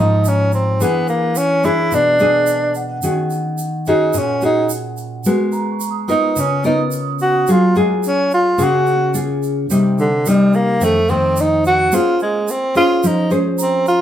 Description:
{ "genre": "bossa nova", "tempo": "108 BPM", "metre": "4/4", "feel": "straight", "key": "Db major", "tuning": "A4 = 443 Hz", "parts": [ { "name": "breathy tenor saxophone", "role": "melody", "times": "0.0-14.0 s", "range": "D3 to Gb4", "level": "-15 LUFS", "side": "right 1 dB", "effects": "plate reverb" }, { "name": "nylon-string guitar", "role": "accompaniment", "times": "0.0-14.0 s", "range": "F2 to C5", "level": "-17 LUFS", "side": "left 1 dB", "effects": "none" }, { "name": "vibraphone with soft mallets", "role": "accompaniment", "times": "0.0-7.5, 13.6-14.0 s", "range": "Gb5 to Eb6", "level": "-26 LUFS", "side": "right 7 dB", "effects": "none" }, { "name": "egg shaker", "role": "percussion", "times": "0.2-14.0 s", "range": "none", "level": "-30 LUFS", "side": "right 5 dB", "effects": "none" } ], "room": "wet studio reverb, RT60 0.6 s", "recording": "heard from further back in the room", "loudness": "-14 LUFS", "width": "side -10 dB against mid", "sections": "0.0-14.0 A section", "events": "tenor saxophone solo 0.0-14.0", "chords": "0.0 Db69; 0.8 E7#11; 3.0 Ebm7; 5.2 Abm9; 6.4 Db13; 7.5 Gbmaj9; 9.7 Cm7; 10.8 F7; 11.9 Bbm9" }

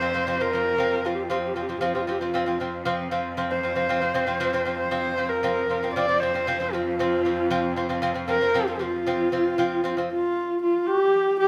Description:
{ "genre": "mongolian traditional, Mongolian folk", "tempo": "116 BPM", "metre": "4/4", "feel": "straight", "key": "unclear", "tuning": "A4 = 440 Hz", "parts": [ { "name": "dark horsehead fiddle", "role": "melody", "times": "0.0-11.5 s", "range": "F4 to D5", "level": "-26 LUFS", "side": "equal", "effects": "none" }, { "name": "lute", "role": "arpeggios", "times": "0.0-10.1 s", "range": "F3 to C4", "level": "-29 LUFS", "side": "equal", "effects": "none" }, { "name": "clear cello", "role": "drone", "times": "0.0-10.2 s", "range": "F2", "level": "-37 LUFS", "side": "equal", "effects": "none" }, { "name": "breathy low xiao", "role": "second line", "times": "10.1-11.5 s", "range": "F4 to G4", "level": "-32 LUFS", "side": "equal", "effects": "none" } ], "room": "moderate large studio reverb, RT60 1.1 s", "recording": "band playing live in one room", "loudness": "-25 LUFS", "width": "mono", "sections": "0.0-10.1 A section; 10.1-11.5 B section", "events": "none", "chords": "0.0 F5; 10.1 N.C." }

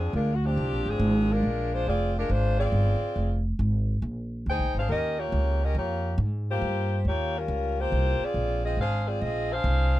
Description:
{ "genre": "jazz, big band swing", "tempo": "139 BPM", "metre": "4/4", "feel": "swing 67% on 8ths", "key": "Bb major", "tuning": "A4 = 440 Hz", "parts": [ { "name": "mellow saxophone section", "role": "melody", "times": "0.0-10.0 s", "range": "F3 to G5", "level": "-28 LUFS", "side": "left 1 dB", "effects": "none" }, { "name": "upright bass", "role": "bass", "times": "0.0-10.0 s", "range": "F1 to Ab2", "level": "-26 LUFS", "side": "equal", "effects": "none" } ], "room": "little or no reverb", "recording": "dry, close 1970s-style studio recording", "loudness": "-24 LUFS", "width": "side -15 dB against mid", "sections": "0.0-10.0 A section", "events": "none", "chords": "0.0 Bb9; 3.2 Fm; 4.0 Bb9; 4.9 Eb9; 8.4 Bb9" }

